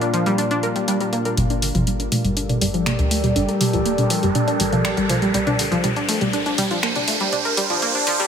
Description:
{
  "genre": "melodic techno",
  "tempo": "121 BPM",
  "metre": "4/4",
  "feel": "straight",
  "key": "G minor",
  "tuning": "A4 = 440 Hz",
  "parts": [
    { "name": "deep dark ambient pad", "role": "sustained chords", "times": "0.0-8.3 s", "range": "Bb2 to F5", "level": "-24 LUFS", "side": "left 1 dB", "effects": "chorus, built-in reverb" },
    { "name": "analog pluck", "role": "arpeggios", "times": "0.0-8.3 s", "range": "D3 to Bb4", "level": "-22 LUFS", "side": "equal", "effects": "chorus, tape echo" },
    { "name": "techno drum kit", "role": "drums", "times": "0.0-8.3 s", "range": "finger snaps, hi-hat, toms", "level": "-23 LUFS", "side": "equal", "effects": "overdrive" },
    { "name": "plucky analog bass", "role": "bass", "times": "1.4-8.3 s", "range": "D1 to D2", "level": "-26 LUFS", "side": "equal", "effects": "tube saturation" },
    { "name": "riser", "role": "sound effects", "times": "3.3-8.3 s", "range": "none", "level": "-26 LUFS", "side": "right 3 dB", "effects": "none" }
  ],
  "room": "light reverb, digital ambience",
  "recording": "high-pass filter",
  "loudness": "-18 LUFS",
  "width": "side -7 dB against mid",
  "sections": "0.0-1.4 A section; 1.4-8.3 B section",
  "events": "filter sweep on ambient pad 0.0-1.4; build-up 1.4-8.3; filter sweep on synth pluck 1.4-8.3; filter sweep 1.4-8.3; riser 3.3-8.3",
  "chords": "0.0 Bb; 1.4 Gmadd9; 5.3 Csus2"
}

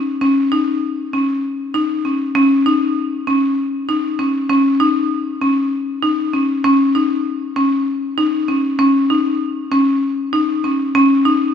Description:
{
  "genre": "progressive instrumental, progressive",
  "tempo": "196 BPM (eighths)",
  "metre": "7/8",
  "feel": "straight",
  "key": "unclear",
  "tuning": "A4 = 438 Hz",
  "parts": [
    { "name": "buzzing marimba with medium hard mallets", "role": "solo", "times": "0.0-11.5 s", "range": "Db4 to Eb4", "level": "-14 LUFS", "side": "left 1 dB", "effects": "none" }
  ],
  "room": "moderate plate reverb, RT60 2.9 s",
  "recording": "minimal, uncompressed stereo recording",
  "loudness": "-14 LUFS",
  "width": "side -8 dB against mid",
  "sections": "0.0-11.5 A section",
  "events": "none",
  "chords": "none"
}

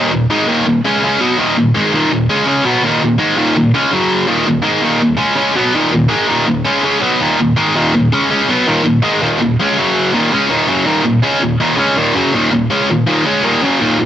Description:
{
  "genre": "metal",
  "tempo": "164 BPM",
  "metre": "4/4",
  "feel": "straight",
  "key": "Eb minor",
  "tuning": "A4 = 439 Hz",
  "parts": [
    { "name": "tight distorted guitar", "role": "solo", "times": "0.0-14.1 s", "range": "Eb2 to Db4", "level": "-11 LUFS", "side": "equal", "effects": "distortion, cassette tape" }
  ],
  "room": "light reverb",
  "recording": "home recording on cassette, nothing above 7.8 kHz",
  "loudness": "-11 LUFS",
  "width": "side -10 dB against mid",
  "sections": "0.0-10.1 A section; 10.1-14.1 B section",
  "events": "none",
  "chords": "0.0 Eb5; 3.9 Gb5; 4.3 Eb5; 9.8 Gb5; 10.1 Ebm"
}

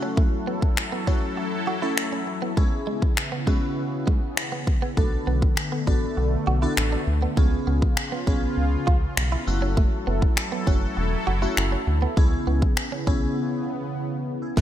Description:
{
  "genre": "dance-pop",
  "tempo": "100 BPM",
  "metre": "4/4",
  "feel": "straight",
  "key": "unclear",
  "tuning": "A4 = 443 Hz",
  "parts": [
    { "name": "glassy digital keys", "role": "accompaniment", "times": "0.0-14.6 s", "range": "A3 to A4", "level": "-30 LUFS", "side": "left 1 dB", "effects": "chorus, sidechain pumping" },
    { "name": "sweeping resonant pad", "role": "sustained chords", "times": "0.0-14.6 s", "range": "C#3 to A4", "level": "-30 LUFS", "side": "left 1 dB", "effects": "chorus, sidechain pumping" },
    { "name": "direct-recorded clean electric guitar", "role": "riff", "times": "0.0-14.6 s", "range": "G#3 to F#4", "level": "-32 LUFS", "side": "right 5 dB", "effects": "analog chorus" },
    { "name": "pop drum kit", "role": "drums", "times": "0.2-14.6 s", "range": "finger snaps, kick drum, snare drum", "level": "-22 LUFS", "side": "equal", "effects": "gated reverb" },
    { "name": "round analog bass", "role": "bass", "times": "5.0-14.6 s", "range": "E1 to D2", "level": "-24 LUFS", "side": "equal", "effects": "sidechain pumping" }
  ],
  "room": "light reverb",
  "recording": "bright 1980s-style digital production",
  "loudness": "-21 LUFS",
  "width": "side -11 dB against mid",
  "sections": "0.0-14.6 A section",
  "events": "break 13.4-14.6",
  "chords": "0.0 F#m7; 2.6 C#m7; 5.0 Bm7; 7.4 C#7; 9.5 F#m7; 12.2 C#m7"
}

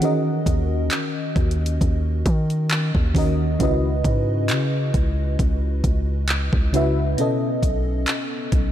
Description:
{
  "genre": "contemporary R&B",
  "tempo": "67 BPM",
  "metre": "4/4",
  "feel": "swing 54% on 16ths",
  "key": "C# dorian",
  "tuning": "A4 = 440 Hz",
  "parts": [
    { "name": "FM electric piano with soft pad layer", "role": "accompaniment", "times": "0.0-8.7 s", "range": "B2 to E5", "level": "-23 LUFS", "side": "equal", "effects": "chorus" },
    { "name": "smooth R&B drum kit", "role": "drums", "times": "0.0-8.7 s", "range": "handclaps, hi-hat, kick drum", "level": "-23 LUFS", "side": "equal", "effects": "none" },
    { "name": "warm 808-style bass", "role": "bass", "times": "0.5-8.7 s", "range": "B1 to D#3", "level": "-22 LUFS", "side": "equal", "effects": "none" }
  ],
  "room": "moderate church reverb, RT60 3.8 s",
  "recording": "dreamy mix soaked in reverb",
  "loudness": "-19 LUFS",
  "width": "side -11 dB against mid",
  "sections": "0.0-8.7 A section",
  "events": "none",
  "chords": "0.0 D#m7; 3.6 C#m11; 7.2 B7"
}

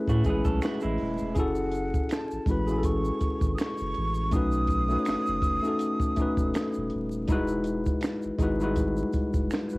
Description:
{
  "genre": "R&B, neo-soul",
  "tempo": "81 BPM",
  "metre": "4/4",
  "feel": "swing 54% on 16ths",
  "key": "F# dorian",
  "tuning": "A4 = 440 Hz",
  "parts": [
    { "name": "tine electric piano", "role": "accompaniment", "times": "0.0-9.8 s", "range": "G3 to D#5", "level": "-28 LUFS", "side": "left 1 dB", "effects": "none" },
    { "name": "electric guitar through a small old amp", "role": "second line", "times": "0.1-1.3 s", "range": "G#3 to A4", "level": "-34 LUFS", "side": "right 3 dB", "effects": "none" },
    { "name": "saturated sub bass", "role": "bass", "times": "0.1-9.8 s", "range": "D#1 to A2", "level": "-30 LUFS", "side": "equal", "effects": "none" },
    { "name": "compact cocktail drum kit", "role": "drums", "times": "0.1-9.7 s", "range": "finger snaps, hi-hat, kick drum, snare drum", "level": "-29 LUFS", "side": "equal", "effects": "cassette tape" },
    { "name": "egg shaker and finger snaps", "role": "percussion", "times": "0.1-9.8 s", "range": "none", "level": "-44 LUFS", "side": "right 4 dB", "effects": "none" },
    { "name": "breathy concert flute", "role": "melody", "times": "1.4-6.9 s", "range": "F#5 to D#6", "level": "-32 LUFS", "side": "right 1 dB", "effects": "cassette tape" }
  ],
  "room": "light reverb",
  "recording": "home recording on cassette, vinyl crackle",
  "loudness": "-25 LUFS",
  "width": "side -22 dB against mid",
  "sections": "0.0-9.8 A section",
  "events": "none",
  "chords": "0.0 Amaj9; 1.4 F#m9; 4.3 B7; 7.3 Emaj9"
}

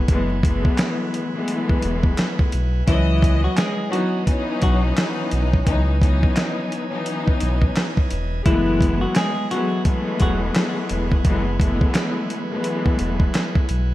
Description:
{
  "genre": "hip hop, boom-bap hip-hop",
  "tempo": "86 BPM",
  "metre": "4/4",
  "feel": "swing 61% on 16ths",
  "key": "F# minor",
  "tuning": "A4 = 439 Hz",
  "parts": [
    { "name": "bright tonewheel organ", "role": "sustained chords", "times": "0.0-13.9 s", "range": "E3 to G#5", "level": "-34 LUFS", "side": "right 2 dB", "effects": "overdrive, stopped rotary speaker" },
    { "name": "sub bass with octave", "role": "bass", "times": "0.0-13.9 s", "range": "E1 to C#2", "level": "-22 LUFS", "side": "equal", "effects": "none" },
    { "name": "warm studio string section", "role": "accompaniment", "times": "0.1-13.6 s", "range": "E3 to D#5", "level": "-24 LUFS", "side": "left 2 dB", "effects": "none" },
    { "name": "dusty soul sampler-style drum kit", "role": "drums", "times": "0.1-13.9 s", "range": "handclaps, hi-hat, kick drum, snare drum", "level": "-20 LUFS", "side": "equal", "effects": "gated reverb" },
    { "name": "clean electric guitar", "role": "melody", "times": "2.9-10.4 s", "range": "E3 to G#4", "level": "-24 LUFS", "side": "left 1 dB", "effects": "wide subtle chorus" }
  ],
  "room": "light reverb",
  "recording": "bright 1980s-style digital production, vinyl crackle",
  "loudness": "-18 LUFS",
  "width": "side -15 dB against mid",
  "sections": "0.0-13.9 A section",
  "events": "none",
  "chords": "0.0 F#m11; 2.9 C#m11; 8.5 F#m11"
}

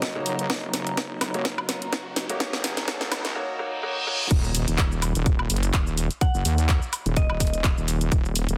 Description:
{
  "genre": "bass house",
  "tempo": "126 BPM",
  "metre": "4/4",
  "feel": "swing 55% on 16ths",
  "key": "Eb minor",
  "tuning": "A4 = 440 Hz",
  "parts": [
    { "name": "soft synth bell", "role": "melody", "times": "0.0, 6.2-7.6 s", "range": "Eb5 to Gb5", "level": "-36 LUFS", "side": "equal", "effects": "chorus, digital delay" },
    { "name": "sweeping resonant pad", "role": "sustained chords", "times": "0.0-3.3 s", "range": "Db3 to Eb4", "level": "-40 LUFS", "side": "equal", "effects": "chorus, sidechain pumping" },
    { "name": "wobble bass", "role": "bass", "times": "0.0-8.6 s", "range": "Eb1 to Eb2", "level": "-29 LUFS", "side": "equal", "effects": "chorus, tube saturation, sidechain pumping, high-pass filter" },
    { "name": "electronic kick drum", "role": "drums", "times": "0.0-8.2 s", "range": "none", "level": "-25 LUFS", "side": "equal", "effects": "high-pass filter on kick" },
    { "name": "garage drum kit", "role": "drums", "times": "0.0-8.6 s", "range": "crash cymbal, handclaps, hi-hat, shaker, snare drum, woodblock", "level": "-30 LUFS", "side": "equal", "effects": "soft clipping on snare" },
    { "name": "riser, reverse cymbal and impact", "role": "sound effects", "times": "1.1-6.2 s", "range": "none", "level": "-36 LUFS", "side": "equal", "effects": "none" },
    { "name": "granular cloud pad", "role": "texture", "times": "0.0-3.4 s", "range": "Gb4 to Bb5", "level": "-38 LUFS", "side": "equal", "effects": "built-in reverb, sidechain pumping" },
    { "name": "bright baby grand piano", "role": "stabs", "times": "0.2-4.3 s", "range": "Bb3 to Db5", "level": "-34 LUFS", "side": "equal", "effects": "vintage 12-bit sampler grit, sidechain pumping, low-pass filter, digital delay" }
  ],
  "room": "light reverb, digital ambience",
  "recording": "dense, heavily limited modern master, high-pass filter",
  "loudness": "-25 LUFS",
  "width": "mono",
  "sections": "0.0-4.3 A section; 4.3-8.6 B section",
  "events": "build-up 0.0-4.3; drum fill 0.0-3.4; filter sweep 0.0-4.3; reverse cymbal 3.4-4.3; drop 4.3-8.6; impact 4.3-6.2",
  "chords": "0.0 Ebm7; 4.3 N.C."
}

